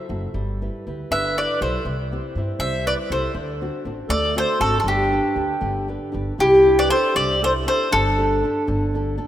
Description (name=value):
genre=italian folk, Italian serenade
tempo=79 BPM (dotted quarters)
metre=6/8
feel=rubato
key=G major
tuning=A4 = 440 Hz
part: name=flamenco guitar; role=accompaniment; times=0.0-9.3 s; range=C3 to B4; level=-31 LUFS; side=left 1 dB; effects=none
part: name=upright bass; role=bass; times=0.1-9.2 s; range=F#1 to G2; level=-27 LUFS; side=equal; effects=none
part: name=mandolin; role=melody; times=1.1-9.1 s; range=G4 to E5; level=-19 LUFS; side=left 1 dB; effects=none
part: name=warm clarinet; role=second line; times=1.1-9.1 s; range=D4 to C5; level=-28 LUFS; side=right 4 dB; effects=none
room=moderate lush hall reverb, RT60 2.7 s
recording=rough home demo mix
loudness=-18 LUFS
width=side -11 dB against mid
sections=0.0-6.4 A section; 6.4-9.3 B section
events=none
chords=0.3 G6; 1.8 C; 3.3 D7; 4.8 G; 6.4 Cadd9; 7.9 Gsus2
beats=| 0.34 1.10 | 1.85 2.59 | 3.34 4.09 | 4.85 5.62 | 6.39 7.16 | 7.93 8.68